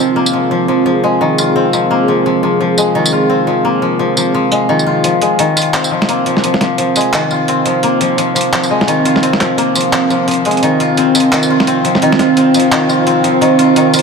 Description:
half-time drum and bass; 172 BPM; 4/4; swing 59% on 16ths, half-time; F minor; A4 = 442 Hz
dark analog pad; sustained chords; 0.0-14.0 s; C4 to C5; -15 LUFS; right 2 dB; chorus
koto; arpeggios; 0.0-14.0 s; Eb3 to F4; -13 LUFS; left 2 dB; low-pass filter, digital delay
boom bap sampler-style drum kit; drums; 0.3-14.0 s; handclaps, hi-hat, snare drum, tambourine; -17 LUFS; right 1 dB
moderate huge ambient reverb, RT60 4.1 s; -10 LUFS; side -5 dB against mid
0.0-5.0 A section; 5.0-14.0 B section
build-up 5.0-14.0
0.0 F5

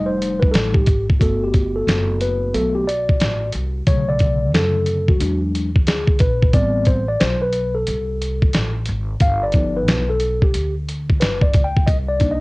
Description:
hip hop, jazz-hop; 90 BPM; 4/4; swing 64% on 16ths; G major; A4 = 440 Hz
mellow tine electric piano; accompaniment; 0.0-12.4 s; C#3 to G5; -20 LUFS; left 1 dB; slow stereo tremolo, cassette tape
upright bass; bass; 0.0-12.4 s; F1 to F#2; -23 LUFS; equal
dusty soul sampler-style drum kit; drums; 0.2-12.4 s; hi-hat, kick drum, snare drum; -17 LUFS; equal; vintage 12-bit sampler grit, cassette tape
light reverb; home recording on cassette; -16 LUFS; side -24 dB against mid
0.0-1.2 A section; 1.2-12.4 A section
tine electric piano solo 0.0-1.2, 1.2-12.4
0.0 F9; 1.2 Gmaj9; 3.9 Bm7; 5.2 E7; 6.5 Am9; 9.2 G7b13; 11.9 Cm9

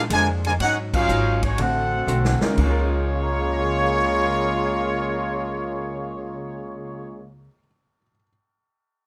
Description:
jazz, big band swing; 122 BPM; 4/4; swing 68% on 8ths; Db major; A4 = 440 Hz
clear trumpet section; melody; 0.0-7.3 s; Ab3 to Ab5; -27 LUFS; equal
warm trombone section; second line; 0.0-7.3 s; Db3 to Gb4; -29 LUFS; equal
upright bass; bass; 0.0-7.5 s; Ab1 to Ab2; -28 LUFS; equal
archtop guitar, miked and amplified; accompaniment; 0.1-7.6 s; Ab2 to F#4; -34 LUFS; equal
swinging big-band drum kit; drums; 0.1-2.7 s; crash cymbal, hi-hat, kick drum, ride cymbal, snare drum; -31 LUFS; equal
warm baby grand piano; accompaniment; 2.4-8.3 s; Db3 to Db7; -32 LUFS; equal
light reverb; -22 LUFS; mono
0.0-2.6 A section; 2.6-6.5 B section
band accent 0.8; drum fill 2.1-2.6
0.0 Bb7; 0.6 Ab7sus4; 1.6 D7; 2.6 Db6

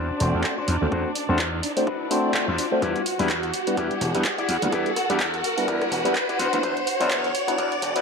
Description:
filtered disco house; 126 BPM; 4/4; swing 57% on 16ths; A4 = 441 Hz
clear studio string section; sustained chords; 0.0-8.0 s; D4 to F#5; -30 LUFS; right 1 dB; sidechain pumping, low-pass filter
electric guitar with an envelope filter; riff; 0.0-7.9 s; D4 to D5; -31 LUFS; left 6 dB; sidechain pumping, low-pass filter
gritty slap bass; bass; 0.0-8.0 s; E1 to E2; -28 LUFS; equal; overdrive, sidechain pumping, low-pass filter
riser; sound effects; 0.0-8.0 s; -29 LUFS; equal
barky tine electric piano; accompaniment; 0.2-8.0 s; F#3 to C5; -26 LUFS; left 1 dB; overdrive, phaser, sidechain pumping, low-pass filter
punchy analog drum machine; drums; 0.2-8.0 s; handclaps, hi-hat, rim click; -29 LUFS; right 1 dB
electronic kick drum; drums; 0.4-7.7 s; -34 LUFS; equal; high-pass filter on kick
moderate plate reverb, RT60 2.4 s; dark, warm production, high-pass filter; -21 LUFS; side -5 dB against mid
0.0-8.0 A section
build-up 0.0-8.0; riser 0.0-8.0; filter sweep 0.0-8.0
0.0 D7/E; 2.8 Em7; 6.4 D7

